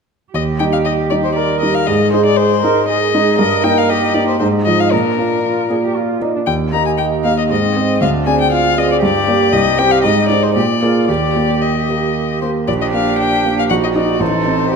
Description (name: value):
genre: quick classical-period movement for piano quartet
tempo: 117 BPM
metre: 3/4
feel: straight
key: Eb major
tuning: A4 = 440 Hz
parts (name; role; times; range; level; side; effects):
- muted violin; melody; 0.3-14.8 s; Bb4 to Bb5; -18 LUFS; left 8 dB; none
- muted cello; second line; 0.3-14.8 s; C4 to Bb4; -20 LUFS; right 6 dB; none
- warm grand piano; accompaniment; 0.3-14.8 s; A1 to Eb5; -15 LUFS; right 1 dB; none
- muted violin; second line; 12.7-14.8 s; D4 to Eb4; -22 LUFS; left 1 dB; none
room: moderate concert hall reverb, RT60 2.0 s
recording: none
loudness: -12 LUFS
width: side -5 dB against mid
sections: 0.3-12.7 A section; 12.7-14.8 B section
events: none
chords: 0.3 Eb; 1.9 Ab; 3.4 Eb/G; 4.4 Fm7/Ab; 4.9 Bb; 6.5 Eb; 7.5 Ab; 8.0 Dm7b5; 9.0 Gm; 9.5 Cm; 10.0 Ab; 10.6 Bb7; 11.1 Eb; 12.7 Bb; 13.7 Ebm/Bb; 14.2 F7/A (rootless)